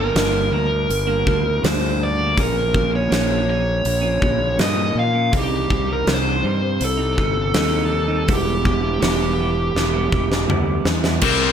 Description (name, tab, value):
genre	quiet-loud alternative rock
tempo	81 BPM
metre	4/4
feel	straight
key	unclear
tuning	A4 = 440 Hz
part	smooth overdriven lead guitar	melody	0.0-11.5 s	G4 to F5	-22 LUFS	equal	none
part	clean electric guitar	arpeggios	0.0-11.5 s	G2 to E4	-26 LUFS	right 8 dB	analog chorus
part	fuzz fingered electric bass	bass	0.0-11.5 s	E1 to Bb2	-22 LUFS	left 1 dB	overdrive
part	huge arena drum kit	drums	0.2-11.4 s	crash cymbal, hi-hat, kick drum, snare drum, toms	-22 LUFS	equal	none
part	cranked stack guitar	riff	11.2-11.5 s	C3 to C4	-17 LUFS	left 16 dB	overdrive
room	light reverb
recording	none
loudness	-17 LUFS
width	side -8 dB against mid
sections	0.0-11.2 A section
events	drum fill 9.8-11.2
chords	0.0 Gm; 2.4 Bbm; 5.3 Cm; 8.3 Em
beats	0.15 0.90 1.64 | 2.38 3.12 3.86 4.60 | 5.34 6.08 6.81 7.55 | 8.29 9.03 9.76 10.50 | 11.23